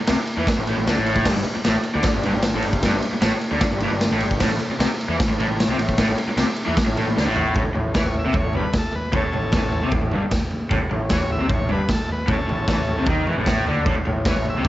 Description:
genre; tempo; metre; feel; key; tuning
garage rock duo or trio; 152 BPM; 4/4; straight; A mixolydian; A4 = 440 Hz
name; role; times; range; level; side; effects
raw garage guitar; riff; 0.0-14.7 s; G2 to E3; -23 LUFS; equal; overdrive, spring reverb, cassette tape
growling picked electric bass; bass; 0.1-14.7 s; G1 to E2; -27 LUFS; equal; overdrive
raw garage drum kit; drums; 0.1-14.7 s; crash cymbal, kick drum, ride cymbal, snare drum, toms; -22 LUFS; equal; none
overdriven combo organ; melody; 8.0-14.7 s; C#4 to E5; -28 LUFS; equal; plate reverb
room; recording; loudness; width
moderate studio reverb, RT60 0.6 s; home recording on cassette, nothing above 7.9 kHz; -18 LUFS; side -15 dB against mid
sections
0.0-7.6 A section; 7.6-14.7 B section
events
drum fill 7.2-7.6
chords
0.0 A5; 1.3 G5; 4.4 A5; 7.6 A

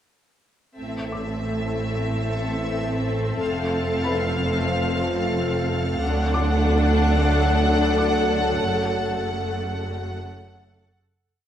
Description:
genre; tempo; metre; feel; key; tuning
cinematic, suspense film score; 92 BPM; 4/4; straight; A minor; A4 = 441 Hz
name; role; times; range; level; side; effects
clear symphonic violin section; melody; 0.8-11.0 s; E5 to F#5; -29 LUFS; left 2 dB; none
dark symphonic violin section; second line; 0.8-11.0 s; A4; -30 LUFS; left 4 dB; none
clear symphonic viola section; accompaniment; 0.8-11.0 s; C#3 to D4; -31 LUFS; right 1 dB; none
backwards swelling texture; sustained chords; 0.8-11.2 s; C4 to F#5; -32 LUFS; equal; built-in reverb
mellow French horn section; sustained chords; 0.8-10.9 s; C#3 to A4; -31 LUFS; left 4 dB; none
mellow trombone section; sustained chords; 0.8-10.9 s; E3 to A3; -30 LUFS; right 2 dB; none
rich symphonic cello section; bass; 0.8-11.0 s; D2 to A2; -29 LUFS; right 2 dB; none
rich symphonic double bass section; bass; 0.8-11.0 s; F1 to D2; -26 LUFS; right 1 dB; none
felt-muted upright piano; texture; 1.1-11.3 s; B4 to D6; -36 LUFS; left 2 dB; none
room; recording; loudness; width
light reverb; close, detailed microphones; -20 LUFS; side -10 dB against mid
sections
0.8-11.2 A section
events
fade-out 8.6-11.2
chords
0.8 Am; 3.4 F; 6.0 D; 8.6 F#m

